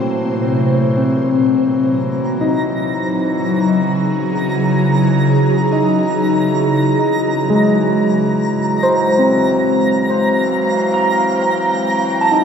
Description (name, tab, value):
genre	ambient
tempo	71 BPM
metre	4/4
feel	straight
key	unclear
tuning	A4 = 442 Hz
part	ethereal airy pad	sustained chords	0.0-12.4 s	Bb2 to A#5	-18 LUFS	equal	ensemble chorus, built-in reverb, phaser
part	overdriven tine electric piano	arpeggios	0.0-12.4 s	G#3 to Bb5	-17 LUFS	left 1 dB	phaser, tape echo
part	hand-pumped harmonium	drone	0.0-12.4 s	E3 to F#3	-22 LUFS	equal	none
part	twinkling granular texture	texture	2.2-12.4 s	A#5	-22 LUFS	right 1 dB	built-in reverb
room	wet echo chamber reverb, RT60 2.5 s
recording	echo-heavy mix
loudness	-13 LUFS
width	side -7 dB against mid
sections	0.0-12.4 A section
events	none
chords	0.0 Bbsus2; 1.6 F#; 8.3 Eb (rootless)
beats	0.71 | 1.56 2.40 3.25 4.09 | 4.94 5.78 6.63 7.47 | 8.32 9.16 10.01 10.85 | 11.70